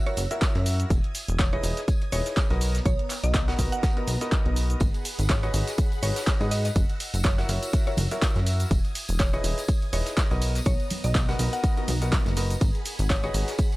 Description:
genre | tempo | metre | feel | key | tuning
piano house | 123 BPM | 4/4 | swing 56% on 16ths | unclear | A4 = 440 Hz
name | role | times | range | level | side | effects
string machine, violins | sustained chords | 0.0-13.8 s | B3 to A#6 | -39 LUFS | equal | ensemble chorus, sidechain pumping
bright upright piano | riff | 0.0-13.5 s | D#4 to F#5 | -34 LUFS | equal | sidechain pumping, analog delay
mallet-like synth pluck | melody | 0.1-13.3 s | C#5 to F#5 | -35 LUFS | equal | chorus, analog delay
punchy analog drum machine | drums | 0.1-13.8 s | handclaps, hi-hat, ride cymbal, shaker | -33 LUFS | right 1 dB | none
plucky analog bass | bass | 0.2-13.4 s | E1 to G#2 | -26 LUFS | equal | sidechain pumping
vintage brush drum kit | drums | 0.2-13.7 s | hi-hat, snare drum, tambourine | -40 LUFS | right 1 dB | sidechain pumping on hats, high-pass filter on hats, high-pass filter on snare, sidechain pumping on perc, high-pass filter on perc, high-pass filter on room
electronic kick drum | drums | 0.4-13.7 s | none | -24 LUFS | equal | none
tambourine and congas | percussion | 4.8-13.8 s | none | -38 LUFS | right 1 dB | none
room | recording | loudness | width
small room ambience | dry, gritty hardware recording, transformer saturation | -22 LUFS | side -20 dB against mid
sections
0.0-13.8 A section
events
none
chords
0.0 F#7; 0.9 Emaj7; 2.6 Bmaj7; 4.8 G#m7; 6.8 F#7; 8.7 Emaj7; 10.4 Bmaj7; 12.6 G#m7

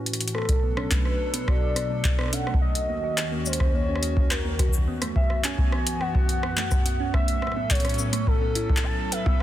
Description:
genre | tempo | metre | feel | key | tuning
IDM | 106 BPM | 4/4 | straight | unclear | A4 = 445 Hz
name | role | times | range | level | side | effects
hollow soft pad | sustained chords | 0.0-9.4 s | D#2 to A4 | -31 LUFS | left 1 dB | chorus
booming analog drum machine | drums | 0.1-9.4 s | cabasa, handclaps, hi-hat, rim click | -30 LUFS | left 1 dB | overdrive
warm velvety synth lead | melody | 0.3-9.4 s | A4 to A5 | -30 LUFS | equal | chorus, cassette tape, tape echo
harp-like synth pluck | arpeggios | 0.3-9.4 s | G#3 to B4 | -33 LUFS | right 4 dB | chorus, phaser
electronic kick drum | drums | 0.5-9.4 s | none | -24 LUFS | equal | overdrive
room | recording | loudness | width
light reverb, digital ambience | dense, heavily limited modern master | -22 LUFS | side -13 dB against mid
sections
0.3-9.4 A section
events
break 0.0-0.3; drum fill 0.1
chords
0.3 Bm7; 2.6 D#m7; 4.9 F#7sus4; 7.1 A6

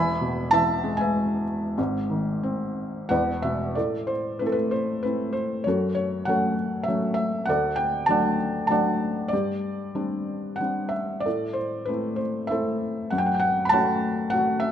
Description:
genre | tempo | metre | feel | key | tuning
classical, lyrical solo piano | 87-100 BPM | 3/4 | rubato | A dorian from 3.8 s | A4 = 444 Hz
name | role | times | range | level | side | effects
felt-muted upright piano | solo | 0.0-14.7 s | E1 to B5 | -23 LUFS | equal | none
room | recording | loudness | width
moderate recital hall reverb, RT60 1.7 s | none | -23 LUFS | side -9 dB against mid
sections
0.0-3.8 A section; 3.8-14.7 B section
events
none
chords
0.0 E; 1.8 Ab; 3.1 E5; 3.8 Am; 5.7 F#m; 7.5 D; 9.3 Gsus4; 11.3 Am; 13.1 F#m

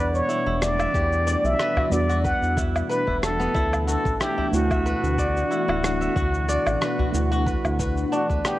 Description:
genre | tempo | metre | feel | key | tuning
organic downtempo | 92 BPM | 4/4 | swing 54% on 16ths | unclear | A4 = 439 Hz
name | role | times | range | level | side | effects
trumpet with plunger mute | melody | 0.0-8.6 s | F#4 to F#5 | -26 LUFS | equal | tape echo
muted felt-like synth keys | accompaniment | 0.0-8.6 s | G3 to F#5 | -30 LUFS | right 2 dB | chorus, sidechain pumping, ping-pong delay
ethereal airy pad | sustained chords | 0.2-8.6 s | B2 to F#5 | -31 LUFS | left 2 dB | ensemble chorus, built-in reverb, sidechain pumping
kora | arpeggios | 0.0-8.6 s | B3 to E5 | -28 LUFS | equal | ping-pong delay
round analog bass | bass | 0.0-8.4 s | D1 to E2 | -26 LUFS | equal | sidechain pumping
electronic shaker, rim click and woodblock | drums | 0.1-8.6 s | none | -29 LUFS | equal | none
electronic kick drum | drums | 0.9-8.4 s | none | -28 LUFS | equal | none
udu | percussion | 0.9-7.1 s | none | -30 LUFS | equal | none
room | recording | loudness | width
light reverb, studio ambience | worn, warbling old tape, cassette tape, warbly pitch drift | -20 LUFS | side -16 dB against mid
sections
0.0-8.6 A section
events
none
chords
0.0 Em7; 3.6 D

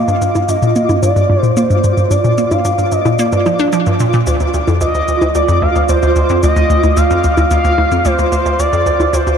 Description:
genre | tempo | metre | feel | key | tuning
ambient, sequencer-driven space music | 111 BPM | 4/4 | straight | G minor | A4 = 440 Hz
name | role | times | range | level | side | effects
expressive synth lead | melody | 0.0-9.4 s | C5 to F5 | -16 LUFS | left 1 dB | chorus, tape echo
pulsing gated texture | texture | 0.0-9.4 s | F4 to D6 | -18 LUFS | right 3 dB | chorus, built-in reverb
hollow square pluck | riff | 0.1-9.4 s | D2 to D4 | -14 LUFS | equal | chorus, tape echo
cabasa and bongos | percussion | 0.1-9.4 s | none | -24 LUFS | equal | tape echo
room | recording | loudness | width
moderate huge ambient reverb, RT60 8.1 s | dark, warm production | -11 LUFS | side -7 dB against mid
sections
0.0-9.4 A section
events
none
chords
0.0 Gm7; 4.3 Dm7

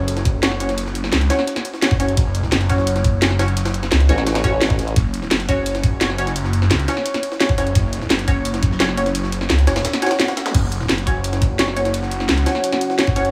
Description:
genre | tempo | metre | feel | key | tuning
dark technical drum and bass | 172 BPM | 4/4 | straight | unclear | A4 = 441 Hz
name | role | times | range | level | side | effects
filtered dub chord stab | stabs | 0.0-13.3 s | C#4 to C#5 | -26 LUFS | equal | lush chorus, dub echo
phased detuned saw bass | bass | 0.0-13.3 s | F#1 to C#2 | -22 LUFS | equal | phaser, overdrive
drum and bass drum kit | drums | 0.1-13.3 s | crash cymbal, hi-hat, snare drum | -24 LUFS | equal | none
jungle sampler-style drum kit | drums | 0.1-13.2 s | ride cymbal, snare drum | -30 LUFS | equal | high-pass filter on snare, high-pass filter on cymbals, high-pass filter on room
electronic kick drum | drums | 0.3-13.1 s | none | -21 LUFS | equal | none
formant-sweep wobble bass | bass | 4.1-4.9 s | A1 | -22 LUFS | equal | chorus
swell and zap | sound effects | 10.0-10.5 s | none | -31 LUFS | equal | none
deep dark ambient pad | sustained chords | 11.3-13.3 s | C#4 to F#5 | -30 LUFS | equal | chorus, built-in reverb, sidechain pumping
room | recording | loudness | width
light reverb | none | -19 LUFS | mono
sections
0.0-13.3 A section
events
swell 10.0-10.5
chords
0.0 F#5

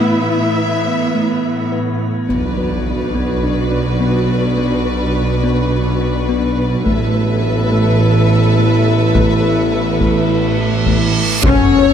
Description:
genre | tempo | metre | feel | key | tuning
cinematic, hybrid orchestral and electronic film score | 105 BPM | 4/4 | straight | unclear | A4 = 440 Hz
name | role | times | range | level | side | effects
rich studio violin section | melody | 0.0-11.9 s | D5 to F#5 | -27 LUFS | left 4 dB | none
warm symphonic viola section | accompaniment | 0.0-11.9 s | B3 to A4 | -23 LUFS | right 1 dB | none
metallic inharmonic drone | sustained chords | 0.0-11.9 s | C#3 to B4 | -23 LUFS | equal | chorus, built-in reverb
thumb-piano-like synth pluck | arpeggios | 0.0-11.9 s | F#3 to B4 | -23 LUFS | left 3 dB | chorus
dark symphonic cello section | bass | 0.0-11.2 s | A2 to B2 | -21 LUFS | right 2 dB | none
warm symphonic violin section | second line | 2.3-11.9 s | B4 to C#5 | -24 LUFS | left 3 dB | none
warm French horn section | sustained chords | 2.3-11.9 s | B3 to E4 | -20 LUFS | left 6 dB | none
mellow tuba | bass | 2.3-11.8 s | F#1 to B1 | -21 LUFS | right 4 dB | none
rich studio double bass section | bass | 2.3-11.8 s | A1 to F#2 | -20 LUFS | right 3 dB | none
solo taiko drums | drums | 2.3-3.4, 6.9-11.9 s | none | -20 LUFS | left 1 dB | none
impact, reverse cymbal and sub drop | sound effects | 2.3-4.6, 10.1-11.9 s | none | -23 LUFS | right 1 dB | none
sub bass with octave | bass | 11.4-11.9 s | F#1 | -19 LUFS | equal | none
clear trombone section | sustained chords | 11.5-11.6 s | F#3 to C#4 | -26 LUFS | right 2 dB | none
room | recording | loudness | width
moderate scoring stage reverb, RT60 1.6 s | close, detailed microphones | -13 LUFS | side -8 dB against mid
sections
0.0-2.3 A section; 2.3-11.4 B section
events
impact 2.3-4.6, 11.4-11.9; reverse cymbal 10.1-11.4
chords
0.0 Asus2; 2.3 Bm; 6.9 Asus2

